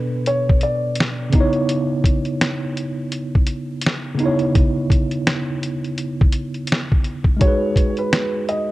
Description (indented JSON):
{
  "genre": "lo-fi hip hop",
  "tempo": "84 BPM",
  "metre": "4/4",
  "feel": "swing 60% on 16ths",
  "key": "unclear",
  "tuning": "A4 = 440 Hz",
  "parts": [
    { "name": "tine electric piano", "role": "accompaniment", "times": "0.0-8.7 s", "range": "B2 to C#5", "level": "-22 LUFS", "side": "right 1 dB", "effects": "overdrive, fast stereo tremolo" },
    { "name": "felt-muted upright piano", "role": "melody", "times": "0.3-0.9, 7.4-8.7 s", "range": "B4 to D#5", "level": "-23 LUFS", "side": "equal", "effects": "analog delay" },
    { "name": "lo-fi sampler-style drum kit", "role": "drums", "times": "0.3-8.7 s", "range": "hi-hat, kick drum, snare drum", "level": "-17 LUFS", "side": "equal", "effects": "none" }
  ],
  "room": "light reverb, digital ambience",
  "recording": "none",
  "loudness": "-17 LUFS",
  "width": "side -17 dB against mid",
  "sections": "0.0-7.4 A section; 7.4-8.7 B section",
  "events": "none",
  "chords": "0.0 Bm7; 1.3 C#m9; 7.4 G#m7"
}